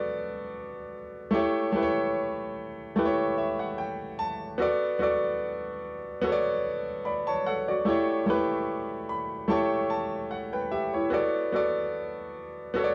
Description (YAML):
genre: soul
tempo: 74 BPM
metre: 4/4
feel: swing 54% on 16ths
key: B minor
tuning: A4 = 443 Hz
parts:
  - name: clear concert grand piano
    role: solo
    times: 0.0-12.9 s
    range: A3 to B5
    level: -29 LUFS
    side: equal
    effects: none
room: light reverb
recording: small room ambience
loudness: -29 LUFS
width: mono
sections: 0.0-12.9 A section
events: grand piano fill 3.0-4.6, 8.7-11.1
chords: 0.0 Bm7; 1.3 A7; 4.6 Bm7; 7.9 A7; 11.1 Bm7